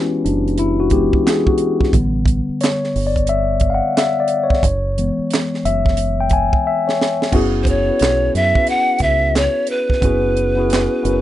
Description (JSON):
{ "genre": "R&B, neo-soul", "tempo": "89 BPM", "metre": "4/4", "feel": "swing 62% on 16ths", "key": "unclear", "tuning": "A4 = 442 Hz", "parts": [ { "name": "mellow tine electric piano", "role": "accompaniment", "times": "0.0-11.2 s", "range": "D3 to G#5", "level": "-18 LUFS", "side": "left 3 dB", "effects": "none" }, { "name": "deep dub fingered electric bass", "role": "bass", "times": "0.3-11.2 s", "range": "F#1 to F#2", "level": "-20 LUFS", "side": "right 1 dB", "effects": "none" }, { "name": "tight funk drum kit", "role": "drums", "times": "0.3-11.2 s", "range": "crash cymbal, handclaps, hi-hat, kick drum, snare drum", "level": "-19 LUFS", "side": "right 2 dB", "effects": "none" }, { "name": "breathy pan flute", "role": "melody", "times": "7.6-11.2 s", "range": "B4 to F#5", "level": "-17 LUFS", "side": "equal", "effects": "none" } ], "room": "light reverb", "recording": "rough home demo mix, nothing above 10.9 kHz", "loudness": "-14 LUFS", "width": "side -13 dB against mid", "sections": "0.0-7.3 A section; 7.3-11.2 B section", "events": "tine electric piano solo 0.0-7.3; drum fill 6.7-7.3", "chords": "0.0 F#9sus4; 1.9 A9sus4; 4.6 F#9sus4" }